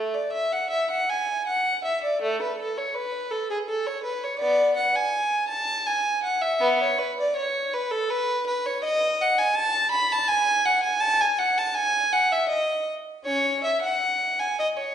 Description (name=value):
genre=classical, baroque-style suite movement for unaccompanied violin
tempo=81 BPM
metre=3/4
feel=rubato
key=A major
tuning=A4 = 440 Hz
part: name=rich violin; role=solo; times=0.0-14.9 s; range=A3 to B5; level=-22 LUFS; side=equal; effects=none
room=wet recital hall reverb, RT60 1.4 s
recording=heard from further back in the room, nothing above 10.3 kHz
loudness=-22 LUFS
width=side -9 dB against mid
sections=0.0-14.9 A section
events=none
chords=none